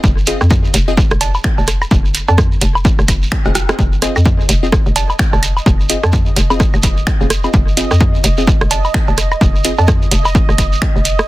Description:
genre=minimal techno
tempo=128 BPM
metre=4/4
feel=swing 59% on 16ths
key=F minor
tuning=A4 = 440 Hz
part: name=hollow knocking FM bass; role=bass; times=0.0-11.2 s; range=F1 to F2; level=-16 LUFS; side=equal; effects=sidechain pumping
part: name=electronic kick drum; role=drums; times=0.0-10.9 s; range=none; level=-14 LUFS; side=equal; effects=overdrive
part: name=shekere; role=percussion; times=0.0-11.3 s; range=none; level=-24 LUFS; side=right 3 dB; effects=none
part: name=wavetable chord stab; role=stabs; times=0.3-9.7 s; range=C4 to Eb5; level=-22 LUFS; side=left 2 dB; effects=tape echo
part: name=punchy analog drum machine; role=drums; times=0.3-11.2 s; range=finger snaps, hi-hat, rim click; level=-19 LUFS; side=right 1 dB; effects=overdrive, soft clipping on snare
part: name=electronic rim click, woodblock and cowbell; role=percussion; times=0.4-11.3 s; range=none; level=-19 LUFS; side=right 2 dB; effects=soft clipping on snare, tape echo
part: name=bubbling stepped-filter texture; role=texture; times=4.2-11.3 s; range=Eb5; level=-25 LUFS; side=right 4 dB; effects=chorus, built-in reverb, sidechain pumping
room=little or no reverb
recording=dense, heavily limited modern master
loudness=-11 LUFS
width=side -18 dB against mid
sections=0.0-11.3 A section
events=drum fill 3.4-3.8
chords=0.0 F7(no3)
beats=| 0.04 0.51 0.97 1.44 | 1.91 2.38 2.85 3.32 | 3.79 4.26 4.72 5.19 | 5.66 6.13 6.60 7.07 | 7.54 8.01 8.47 8.94 | 9.41 9.88 10.35 10.82

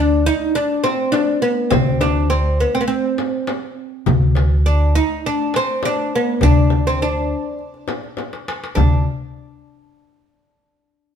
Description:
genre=Turkish makam ensemble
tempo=102 BPM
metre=4/4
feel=straight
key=unclear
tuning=A4 = 440 Hz
part: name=oud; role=melody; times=0.0-9.0 s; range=B3-40c to Eb4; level=-18 LUFS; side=equal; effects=none
part: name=upright bass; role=bass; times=0.0-9.0 s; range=D2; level=-17 LUFS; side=right 1 dB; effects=none
part: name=frame drum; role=percussion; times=0.8-9.0 s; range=none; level=-24 LUFS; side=left 2 dB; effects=none
part: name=darbuka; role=percussion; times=1.1-9.0 s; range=none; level=-23 LUFS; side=left 3 dB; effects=none
room=moderate stone room reverb, RT60 1.1 s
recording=band playing live in one room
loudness=-15 LUFS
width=side -8 dB against mid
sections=0.0-8.8 A section; 8.8-11.1 B section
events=drum fill 8.2-8.8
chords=none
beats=0.55 1.14 | 1.72 2.31 2.90 3.48 | 4.07 4.66 5.24 5.83 | 6.42 7.00 7.59 8.18 | 8.76

